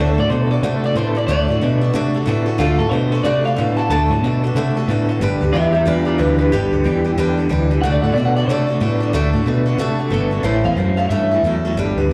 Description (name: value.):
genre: rockabilly.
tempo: 183 BPM.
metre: 4/4.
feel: swing 62% on 8ths.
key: D mixolydian.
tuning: A4 = 440 Hz.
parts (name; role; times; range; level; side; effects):
electric guitar through a small old amp; melody; 0.0-11.4 s; D4 to A5; -23 LUFS; equal; analog chorus, slapback echo, tape echo.
picked swing-style acoustic guitar; accompaniment; 0.0-12.1 s; A2 to B4; -26 LUFS; equal; none.
electric guitar through a small old amp; riff; 0.0-12.1 s; G2 to B3; -25 LUFS; equal; tremolo.
mellow fretless electric bass; bass; 0.0-12.1 s; G1 to C3; -20 LUFS; equal; lush chorus.
room: digital ambience.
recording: live gig heard through the venue's PA, club reverb.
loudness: -17 LUFS.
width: mono.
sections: 0.0-12.1 A section.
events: clean electric guitar solo 0.0-12.1.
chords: 0.0 D; 5.2 G; 7.8 D; 10.5 A.